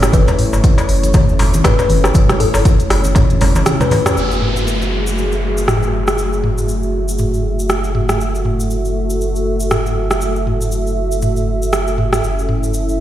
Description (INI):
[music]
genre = afro house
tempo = 119 BPM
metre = 4/4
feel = swing 57% on 16ths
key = F# minor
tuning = A4 = 440 Hz
[part]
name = dark analog pad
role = sustained chords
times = 0.0-13.0 s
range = A3 to E5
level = -21 LUFS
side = right 1 dB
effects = chorus, vintage 12-bit sampler grit, sidechain pumping
[part]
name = warm sub bass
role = bass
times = 0.0-13.0 s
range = F#1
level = -19 LUFS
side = equal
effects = sidechain pumping
[part]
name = afro-pop drum kit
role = drums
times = 0.0-12.6 s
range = hi-hat, rim click, toms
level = -18 LUFS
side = equal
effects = low-pass filter on snare, low-pass filter on hats, low-pass filter on toms
[part]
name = cabasa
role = percussion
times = 0.0-13.0 s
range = none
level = -31 LUFS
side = left 2 dB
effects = none
[part]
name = darbuka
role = percussion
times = 0.0-4.1 s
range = none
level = -23 LUFS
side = left 3 dB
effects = none
[part]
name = buzzing kalimba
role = melody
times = 0.1-4.0 s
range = A4 to B4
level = -22 LUFS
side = left 6 dB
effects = dub echo
[part]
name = electronic kick drum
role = drums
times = 0.1-3.3 s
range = none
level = -12 LUFS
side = equal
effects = none
[part]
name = congas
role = percussion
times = 0.1-4.0 s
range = none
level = -20 LUFS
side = right 1 dB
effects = none
[part]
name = downlifter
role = sound effects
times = 4.2-8.2 s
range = none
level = -24 LUFS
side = left 1 dB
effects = none
[sound]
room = light reverb, studio ambience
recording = played on a big sound system in a bare room, large studio reverb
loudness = -13 LUFS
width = side -12 dB against mid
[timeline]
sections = 0.0-4.2 A section; 4.2-13.0 B section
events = drum fill 3.7-4.2; band accent 4.0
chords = 0.0 A/F#; 4.2 F#m9; 12.2 A/F#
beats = | 0.13 0.64 1.14 1.65 | 2.15 2.65 3.16 3.66 | 4.17 4.67 5.17 5.68 | 6.18 6.69 7.19 7.70 | 8.20 8.71 9.21 9.71 | 10.22 10.72 11.23 11.73 | 12.23 12.74